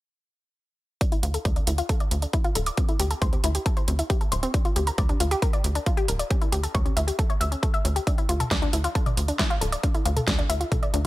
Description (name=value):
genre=uplifting trance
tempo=136 BPM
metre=4/4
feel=straight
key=D minor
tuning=A4 = 440 Hz
part: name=analog pluck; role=arpeggios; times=1.0-11.0 s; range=C4 to E5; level=-29 LUFS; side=left 2 dB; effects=chorus, sidechain pumping, tape echo
part: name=big-room dance drum kit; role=drums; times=1.0-11.0 s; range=hi-hat, snare drum, toms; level=-30 LUFS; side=right 1 dB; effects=overdrive, sidechain pumping on hats, sidechain pumping on toms
part: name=electronic kick drum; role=drums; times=1.0-10.8 s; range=none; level=-24 LUFS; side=equal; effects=overdrive
part: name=tight sequencer bass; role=bass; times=1.2-11.1 s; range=D1 to D2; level=-26 LUFS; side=equal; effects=sidechain pumping
room=digital ambience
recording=none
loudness=-22 LUFS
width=side -17 dB against mid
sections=1.0-11.1 A section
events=none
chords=1.0 Dmadd9; 2.8 Am7/D; 4.5 Gm7/D; 6.3 A7/D; 8.1 Dmadd9